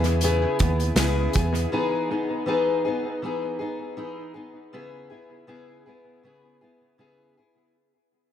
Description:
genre	indie pop, bedroom pop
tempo	80 BPM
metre	4/4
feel	swing 55% on 16ths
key	unclear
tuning	A4 = 443 Hz
part	fingerpicked steel-string acoustic guitar	accompaniment	0.0-7.8 s	C#3 to G#4	-26 LUFS	left 2 dB	wide subtle chorus, vibrato effect, analog delay
part	vintage muted picked electric bass	bass	0.0-1.7 s	C#2 to E2	-23 LUFS	right 1 dB	none
part	loose indie drum kit	drums	0.0-1.7 s	hi-hat, kick drum, snare drum	-26 LUFS	right 1 dB	analog delay
room	light reverb, small room ambience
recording	echo-heavy mix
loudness	-22 LUFS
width	side -10 dB against mid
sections	0.0-7.7 A section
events	fade-out 0.0-7.7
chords	0.0 C#m7; 1.7 Emaj7; 4.7 C#m7

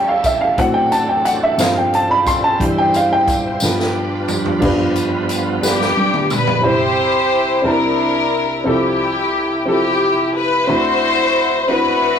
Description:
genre	slow gospel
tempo	60 BPM (dotted quarters)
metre	6/8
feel	straight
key	C major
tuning	A4 = 441 Hz
part	warm grand piano	accompaniment	0.0-12.2 s	G1 to C6	-17 LUFS	equal	none
part	bright tonewheel organ	sustained chords	0.0-5.9 s	G2 to C5	-23 LUFS	right 3 dB	slow rotary speaker, overdrive, chorus vibrato
part	rich studio string section	sustained chords	0.0-6.6 s	A2 to C5	-29 LUFS	equal	none
part	swinging big-band drum kit	drums	0.2-6.6 s	crash cymbal, hi-hat, kick drum, snare drum, toms	-22 LUFS	right 1 dB	none
part	tambourine	percussion	0.2-6.6 s	none	-27 LUFS	left 2 dB	none
part	warm studio string section	melody	5.6-12.2 s	B3 to C5	-15 LUFS	left 2 dB	none
room	wet studio reverb, RT60 0.6 s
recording	rough rehearsal-room recording, warm saturation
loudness	-14 LUFS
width	side -8 dB against mid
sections	0.0-4.6 A section; 4.6-6.6 B section; 6.6-12.2 C section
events	grand piano solo 0.0-4.6; drum fill 3.6-4.6, 5.6-6.6; tonewheel organ solo 4.6-6.6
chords	0.0 A7; 0.6 D7/A; 1.6 G9sus4; 2.6 C/G; 3.6 G7; 6.6 Cmaj7; 7.6 C13; 8.7 Fmaj9/C; 10.7 D13

